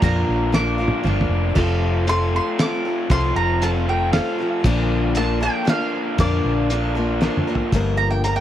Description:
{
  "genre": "folk rock and heartland rock",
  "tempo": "117 BPM",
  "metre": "3/4",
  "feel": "straight",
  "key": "unclear",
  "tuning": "A4 = 438 Hz",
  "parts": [
    { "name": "mandolin", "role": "melody", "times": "0.0-8.4 s", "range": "D5 to D6", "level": "-25 LUFS", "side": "right 2 dB", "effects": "tape echo" },
    { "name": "picked steel-string acoustic guitar", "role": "accompaniment", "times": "0.0-8.4 s", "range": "G2 to Bb4", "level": "-24 LUFS", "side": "left 4 dB", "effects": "none" },
    { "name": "raw garage guitar", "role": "riff", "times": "0.0-8.4 s", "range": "F2 to F4", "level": "-25 LUFS", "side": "right 2 dB", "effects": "overdrive" },
    { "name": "hollow-body short-scale fingered electric bass", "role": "bass", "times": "0.0-8.4 s", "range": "F1 to F2", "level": "-22 LUFS", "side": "equal", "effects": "none" },
    { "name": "cloth-damped thuddy drum kit", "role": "drums", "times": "0.0-8.4 s", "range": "crash cymbal, hi-hat, kick drum, snare drum, toms", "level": "-22 LUFS", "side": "equal", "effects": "none" }
  ],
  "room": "light reverb",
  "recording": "dry, close 1970s-style studio recording",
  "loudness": "-18 LUFS",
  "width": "side -11 dB against mid",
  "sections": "0.0-7.7 A section",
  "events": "drum fill 0.5-1.6, 7.2-7.7",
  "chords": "0.0 Bb; 1.6 F; 4.7 Bb; 7.7 Gm7",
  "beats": "| 0.03 0.55 1.06 | 1.57 2.09 2.60 | 3.11 3.63 4.14 | 4.65 5.17 5.68 | 6.19 6.71 7.22 | 7.74 8.25"
}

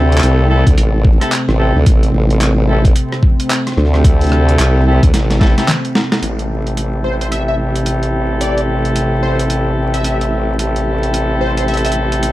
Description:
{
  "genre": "glitch hop",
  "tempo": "110 BPM",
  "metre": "4/4",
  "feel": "swing 61% on 16ths",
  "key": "A minor",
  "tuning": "A4 = 437 Hz",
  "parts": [
    { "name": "warm analog pad", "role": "sustained chords", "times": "0.0-12.3 s", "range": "C3 to G4", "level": "-20 LUFS", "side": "equal", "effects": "chorus, vintage 12-bit sampler grit, sidechain pumping" },
    { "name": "mellow horn section", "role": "stabs", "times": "0.0-12.3 s", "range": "C4 to A4", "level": "-20 LUFS", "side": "left 1 dB", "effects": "sidechain pumping, low-pass filter, dub echo" },
    { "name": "formant-sweep wobble bass", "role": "bass", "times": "0.0-12.3 s", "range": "A1 to D2", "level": "-15 LUFS", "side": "equal", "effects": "chorus" },
    { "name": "boom bap sampler-style drum kit", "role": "drums", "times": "0.1-12.3 s", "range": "handclaps, hi-hat, rim click, snare drum", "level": "-19 LUFS", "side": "equal", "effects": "overdrive" },
    { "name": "electronic kick drum", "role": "drums", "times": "0.7-5.5 s", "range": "none", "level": "-11 LUFS", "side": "equal", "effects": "overdrive" },
    { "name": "plucky unison lead", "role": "melody", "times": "7.0-11.9 s", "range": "C5 to E5", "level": "-23 LUFS", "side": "equal", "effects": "analog chorus, dub echo" }
  ],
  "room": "little or no reverb",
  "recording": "vinyl crackle",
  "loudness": "-12 LUFS",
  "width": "side -16 dB against mid",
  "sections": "0.0-6.2 A section; 6.2-12.3 B section",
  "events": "drum fill 5.1-6.2; band accent 6.1; filter sweep on horn section 6.2-12.3",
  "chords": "0.0 Am7",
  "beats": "0.23 0.77 1.32 | 1.86 2.41 2.96 3.50 | 4.05 4.59 5.14 5.68 | 6.23 6.77 7.32 7.86 | 8.41 8.96 9.50 10.05 | 10.59 11.14 11.68 12.23"
}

